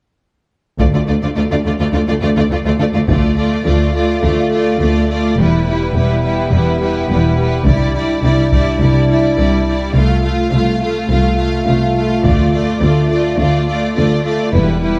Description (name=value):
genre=cinematic, epic orchestral film score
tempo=105 BPM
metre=4/4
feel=straight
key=D dorian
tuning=A4 = 440 Hz
part: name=clear symphonic violin section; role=melody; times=0.8-15.0 s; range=B4 to F5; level=-26 LUFS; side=equal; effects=none
part: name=rich symphonic violin section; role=second line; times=0.8-15.0 s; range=E4 to F4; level=-24 LUFS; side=equal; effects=none
part: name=clear symphonic viola section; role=accompaniment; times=0.8-15.0 s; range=G3 to A3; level=-22 LUFS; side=equal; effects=none
part: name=rich studio double bass section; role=bass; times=0.8-15.0 s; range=E1 to D2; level=-20 LUFS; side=equal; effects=none
part: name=rich symphonic cello section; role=bass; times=0.8-15.0 s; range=C2 to E2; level=-21 LUFS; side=equal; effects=none
part: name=taiko ensemble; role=drums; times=0.8-4.2, 7.7-8.8, 12.2-13.4 s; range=none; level=-20 LUFS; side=equal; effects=none
part: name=mellow French horn section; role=sustained chords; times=3.1-15.0 s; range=A3 to G4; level=-22 LUFS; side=equal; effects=none
room=moderate scoring stage reverb, RT60 1.9 s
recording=none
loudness=-15 LUFS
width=mono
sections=0.8-3.1 A section; 3.1-15.0 B section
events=none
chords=0.8 Dm; 5.4 Em; 7.7 Cadd9; 10.0 F/C; 12.2 Dm